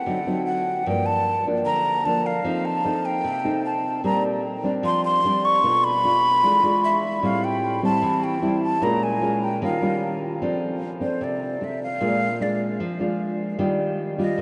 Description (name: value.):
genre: bossa nova.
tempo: 151 BPM.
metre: 4/4.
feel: straight.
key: F major.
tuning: A4 = 440 Hz.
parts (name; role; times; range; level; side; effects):
mellow hollow jazz flute; melody; 0.0-14.4 s; C5 to Db6; -25 LUFS; equal; none.
nylon-string guitar; accompaniment; 0.0-14.4 s; G2 to A4; -26 LUFS; equal; none.
room: wet huge ambient reverb, RT60 7.8 s.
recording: in a vast, echoing space, nothing above 10.4 kHz.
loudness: -23 LUFS.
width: mono.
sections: 0.0-10.4 A section; 10.4-14.4 B section.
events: flute solo 10.4-14.4.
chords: 0.1 D7b9; 0.9 Gm7; 2.5 F7; 4.0 Bb69; 5.6 Bm7b5; 6.4 E7b9; 7.2 Am7; 8.8 Bbm7; 9.6 Eb9; 10.4 F6; 12.0 Bb7; 13.6 Ebmaj9.